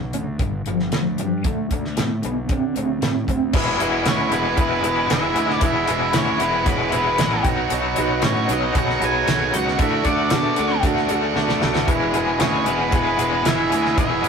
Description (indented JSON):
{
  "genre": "classic rock",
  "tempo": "115 BPM",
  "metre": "4/4",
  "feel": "straight",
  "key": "E mixolydian",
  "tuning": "A4 = 440 Hz",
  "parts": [
    { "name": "biting overdriven guitar", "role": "riff", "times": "0.0-14.3 s", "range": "E2 to G#4", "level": "-23 LUFS", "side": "left 3 dB", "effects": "tremolo" },
    { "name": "fuzz fingered electric bass", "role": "bass", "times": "0.0-14.3 s", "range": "E1 to D3", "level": "-28 LUFS", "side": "equal", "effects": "overdrive" },
    { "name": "damped 70s drum kit", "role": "drums", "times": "0.1-14.3 s", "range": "crash cymbal, hi-hat, kick drum, snare drum", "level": "-23 LUFS", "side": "equal", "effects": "none" },
    { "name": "dark upright piano", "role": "accompaniment", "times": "3.5-14.3 s", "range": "D4 to D5", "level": "-27 LUFS", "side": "right 1 dB", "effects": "none" },
    { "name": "tight distorted guitar", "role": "riff", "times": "3.5-14.3 s", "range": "E2 to G#4", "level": "-25 LUFS", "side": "right 6 dB", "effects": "distortion" },
    { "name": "octave-fuzz lead guitar", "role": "melody", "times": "4.1-14.3 s", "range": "B4 to G#5", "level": "-25 LUFS", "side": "right 2 dB", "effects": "distortion" },
    { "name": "bluesy overdriven lead guitar", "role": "second line", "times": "4.1-14.3 s", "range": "B3 to G#4", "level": "-30 LUFS", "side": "right 3 dB", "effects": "distortion" }
  ],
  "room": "wet small room reverb, RT60 0.5 s",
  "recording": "rough rehearsal-room recording",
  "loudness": "-18 LUFS",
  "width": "side -6 dB against mid",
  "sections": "0.0-3.5 A section; 3.5-14.3 B section",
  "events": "drum fill 11.4-11.9",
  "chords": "0.4 G5; 1.4 D5; 3.5 E; 7.5 B; 9.8 D; 11.9 E"
}